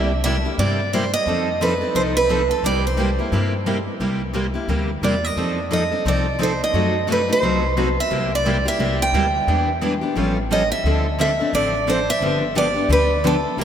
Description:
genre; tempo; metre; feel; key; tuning
acoustic string swing (jazz manouche); 176 BPM; 4/4; swing 60% on 8ths; C major; A4 = 439 Hz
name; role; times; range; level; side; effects
picked steel-string acoustic guitar; melody; 0.0-13.6 s; A4 to G5; -21 LUFS; right 2 dB; none
picked steel-string acoustic guitar; accompaniment; 0.0-13.6 s; C3 to A4; -24 LUFS; left 4 dB; none
picked steel-string acoustic guitar; accompaniment; 0.0-13.6 s; C3 to B4; -26 LUFS; right 4 dB; none
upright bass; bass; 0.0-13.6 s; G1 to G2; -24 LUFS; equal; none
room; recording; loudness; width
wet cathedral reverb, RT60 6.6 s; in a vast, echoing space; -17 LUFS; side -9 dB against mid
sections
0.0-13.6 A section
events
none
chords
0.0 C7; 1.3 F7; 2.6 C7; 5.4 F7; 6.7 F#dim7; 8.1 C7; 9.5 Em7; 10.2 Aaug7; 10.8 Dm7; 12.2 G7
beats
0.25 0.59 0.93 | 1.27 1.61 1.95 2.30 | 2.64 2.98 3.32 3.66 | 4.00 4.34 4.69 5.03 | 5.37 5.71 6.05 6.40 | 6.74 7.08 7.42 7.76 | 8.11 8.45 8.79 9.13 | 9.48 9.82 10.16 10.50 | 10.85 11.19 11.53 11.87 | 12.21 12.55 12.90 13.24 | 13.58

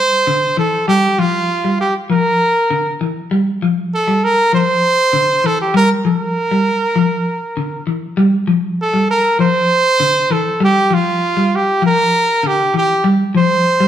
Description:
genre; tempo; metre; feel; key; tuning
afrobeat; 99 BPM; 4/4; straight; unclear; A4 = 438 Hz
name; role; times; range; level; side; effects
warm trumpet; melody; 0.0-13.9 s; F4 to C5; -14 LUFS; right 1 dB; none
clean electric guitar; arpeggios; 0.3-13.9 s; D3 to G3; -16 LUFS; left 2 dB; none
room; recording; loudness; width
wet stone room reverb, RT60 1.4 s; band playing live in one room; -12 LUFS; side -10 dB against mid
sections
0.0-13.9 A section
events
none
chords
0.0 Dmadd11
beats
0.28 | 0.88 1.49 2.10 2.70 | 3.31 3.92 4.53 5.13 | 5.74 6.35 6.96 7.57 | 8.17 8.78 9.39 10.00 | 10.61 11.21 11.82 12.43 | 13.04 13.65

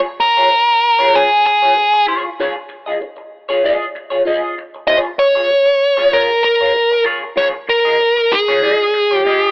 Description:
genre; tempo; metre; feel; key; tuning
funk; 96 BPM; 4/4; straight; unclear; A4 = 440 Hz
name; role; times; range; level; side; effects
semi-hollow electric guitar; accompaniment; 0.0-9.5 s; F4 to Eb5; -18 LUFS; equal; wah, phaser
nasal lead guitar with a parked wah; melody; 0.2-9.5 s; Ab4 to Eb5; -12 LUFS; equal; overdrive
room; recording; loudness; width
light reverb; AM radio sound; -12 LUFS; side -28 dB against mid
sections
0.0-9.5 A section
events
none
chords
0.0 Fm7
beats
0.52 1.14 1.77 | 2.39 3.01 3.64 4.26 | 4.88 5.51 6.13 6.76 | 7.38 8.01 8.63 9.26

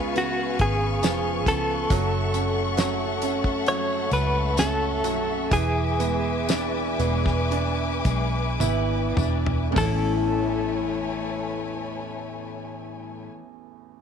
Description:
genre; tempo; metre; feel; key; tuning
pop ballad; 50-69 BPM; 4/4; straight; A major; A4 = 438 Hz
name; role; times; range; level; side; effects
direct-recorded clean electric guitar; melody; 0.0-13.3 s; E#4 to C#5; -27 LUFS; equal; tremolo
warm upright piano; accompaniment; 0.0-14.0 s; A1 to E5; -30 LUFS; right 15 dB; none
dark studio string section; sustained chords; 0.0-13.3 s; A3 to D6; -30 LUFS; left 4 dB; none
picked steel-string acoustic guitar; arpeggios; 0.0-13.4 s; E2 to F#4; -31 LUFS; left 13 dB; slapback echo
vintage muted fingered electric bass; bass; 0.0-13.3 s; E1 to C#2; -27 LUFS; equal; none
damped 70s drum kit; drums; 0.2-10.0 s; hi-hat, kick drum, snare drum, toms; -26 LUFS; equal; none
tambourine; percussion; 0.2-10.3 s; none; -37 LUFS; left 16 dB; none
room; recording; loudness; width
studio reverb; 1960s-style stereo with parts hard left and right; -22 LUFS; side -7 dB against mid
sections
0.0-9.8 A section; 9.8-14.0 B section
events
slowing down 1.9-9.8; upright piano fill 8.1-9.8; drum fill 8.6-9.8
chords
0.0 C#7; 1.9 F#m7; 5.5 E7; 9.8 Amaj7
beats
0.16 1.03 | 1.90 2.77 3.66 4.57 | 5.51 6.49 7.52 8.60 | 9.76 10.97 12.17 13.37

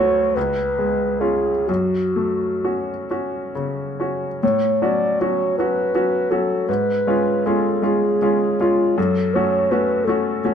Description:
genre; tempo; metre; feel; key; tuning
classical, romantic duo for clarinet and grand piano; 42-56 BPM (dotted quarters); 6/8; rubato; F# minor; A4 = 440 Hz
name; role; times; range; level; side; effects
dark clarinet; melody; 0.0-10.5 s; E#4 to D5; -20 LUFS; equal; none
bright grand piano; accompaniment; 0.0-10.5 s; C#2 to F#4; -20 LUFS; left 1 dB; none
room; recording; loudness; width
light reverb; dark, warm production; -18 LUFS; side -8 dB against mid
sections
0.0-4.4 A section; 4.4-10.5 B section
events
none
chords
0.4 C#7; 1.7 F#m; 4.4 F#m/A; 6.7 C#7/G#; 9.0 F#m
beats
0.36 | 1.68 3.08 | 4.42 5.58 | 6.68 7.83 | 8.97 10.06

